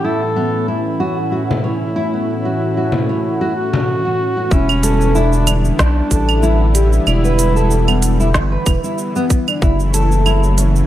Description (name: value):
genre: organic downtempo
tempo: 94 BPM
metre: 4/4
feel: swing 55% on 16ths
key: E dorian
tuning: A4 = 440 Hz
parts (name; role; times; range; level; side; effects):
- mellow duduk; melody; 0.0-8.0 s; C#4 to A4; -22 LUFS; equal; analog delay
- warm analog pad; sustained chords; 0.0-10.9 s; A2 to F#4; -21 LUFS; equal; chorus, sidechain pumping
- nylon-string guitar; arpeggios; 0.0-10.9 s; B3 to D5; -20 LUFS; equal; analog delay
- bronze singing bowl; texture; 0.0-4.5 s; none; barely audible; none; none
- frame drum; percussion; 1.5-3.8 s; none; -20 LUFS; left 2 dB; none
- round analog bass; bass; 4.5-10.8 s; E1 to B1; -15 LUFS; equal; sidechain pumping
- electronic kick drum; drums; 4.5-9.8 s; none; -15 LUFS; equal; overdrive
- organic electronic drum kit; drums; 4.5-10.9 s; cabasa, claves, hi-hat, snare drum; -21 LUFS; right 4 dB; overdrive
room: moderate plate reverb, RT60 1.3 s, small room ambience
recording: dreamy mix soaked in reverb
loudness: -13 LUFS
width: side -12 dB against mid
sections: 0.0-4.5 A section; 4.5-10.9 B section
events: filter sweep on analog synth pad 0.0-4.5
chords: 0.0 F#m7; 4.5 Em7; 9.6 F#m7